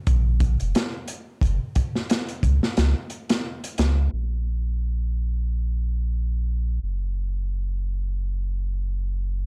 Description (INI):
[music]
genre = trip hop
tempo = 89 BPM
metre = 4/4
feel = swing 56% on 16ths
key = Bb minor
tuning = A4 = 439 Hz
[part]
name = warm sub bass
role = bass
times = 0.1-9.5 s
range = F1 to Db2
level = -25 LUFS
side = equal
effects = tube saturation
[part]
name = crunchy breakbeat drum kit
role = drums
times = 0.1-4.0 s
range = hi-hat, kick drum, snare drum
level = -26 LUFS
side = equal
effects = none
[sound]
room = little or no reverb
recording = dark, warm production, low-pass filter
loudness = -25 LUFS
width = mono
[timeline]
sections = 0.0-4.1 A section; 4.1-9.5 B section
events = filter sweep 4.1-9.5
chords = none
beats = 0.08 0.75 | 1.43 2.10 2.77 3.45 | 4.12 4.79 5.47 6.14 | 6.82 7.49 8.17 8.84